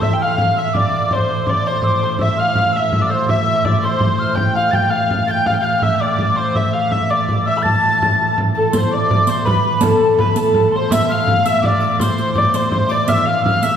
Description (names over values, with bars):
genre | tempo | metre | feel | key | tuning
medieval dance | 110 BPM (dotted quarters) | 6/8 | straight | A minor | A4 = 442 Hz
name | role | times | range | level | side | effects
dark hurdy-gurdy | melody | 0.0-13.8 s | A4 to B5 | -17 LUFS | equal | none
breathy mellow soprano recorder | second line | 0.0-13.8 s | A5 to A6 | -21 LUFS | left 2 dB | none
chamber organ, principal chorus | drone | 0.0-13.8 s | A2 to E3 | -24 LUFS | equal | none
frame drum | percussion | 0.0-13.6 s | none | -20 LUFS | right 1 dB | none
riq | percussion | 8.7-13.8 s | none | -25 LUFS | equal | none
room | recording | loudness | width
wet church reverb, RT60 2.5 s | band playing live in one room | -14 LUFS | side -8 dB against mid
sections
0.0-8.7 A section; 8.7-13.8 A section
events
none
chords
none